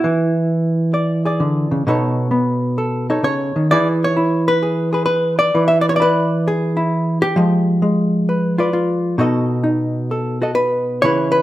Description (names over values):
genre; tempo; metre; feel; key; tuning
solo jazz; 131 BPM; 4/4; swing 67% on 8ths, rubato; B mixolydian; A4 = 440 Hz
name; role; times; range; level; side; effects
hollow-body jazz guitar; solo; 0.0-11.4 s; B2 to E5; -15 LUFS; equal; none
room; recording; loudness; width
moderate large studio reverb, RT60 1.1 s; minimal, uncompressed stereo recording; -15 LUFS; side -15 dB against mid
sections
0.0-11.4 A section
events
none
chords
0.0 E7; 1.8 B9; 3.7 E7; 7.4 Fdim7; 9.2 B7